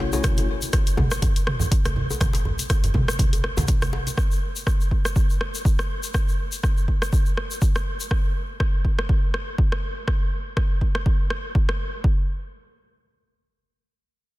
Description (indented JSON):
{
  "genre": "afro house",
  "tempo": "122 BPM",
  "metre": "4/4",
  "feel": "swing 56% on 16ths",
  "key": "F# minor",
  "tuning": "A4 = 439 Hz",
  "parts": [
    { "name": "bell-like tine electric piano", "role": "stabs", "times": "0.0-0.5 s", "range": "A3 to C#5", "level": "-29 LUFS", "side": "left 5 dB", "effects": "sidechain pumping, ping-pong delay" },
    { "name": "congas", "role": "percussion", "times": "0.1-4.2 s", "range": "none", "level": "-28 LUFS", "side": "right 2 dB", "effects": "none" },
    { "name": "djembe", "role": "percussion", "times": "0.1-4.0 s", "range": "none", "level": "-32 LUFS", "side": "left 1 dB", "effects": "none" },
    { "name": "egg shaker", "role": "percussion", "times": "0.1-8.1 s", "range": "none", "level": "-35 LUFS", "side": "left 5 dB", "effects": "none" },
    { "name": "deep house drum kit", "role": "drums", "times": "0.2-11.8 s", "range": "hi-hat, rim click, toms", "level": "-29 LUFS", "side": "equal", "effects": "soft clipping on snare" },
    { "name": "electronic kick drum", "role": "drums", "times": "0.2-12.2 s", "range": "none", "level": "-21 LUFS", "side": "equal", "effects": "none" }
  ],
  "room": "small room ambience",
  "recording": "dense, heavily limited modern master",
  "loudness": "-20 LUFS",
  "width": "side -18 dB against mid",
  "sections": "0.0-12.0 A section; 12.0-14.4 B section",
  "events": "none",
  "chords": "0.0 F#m7; 12.0 N.C."
}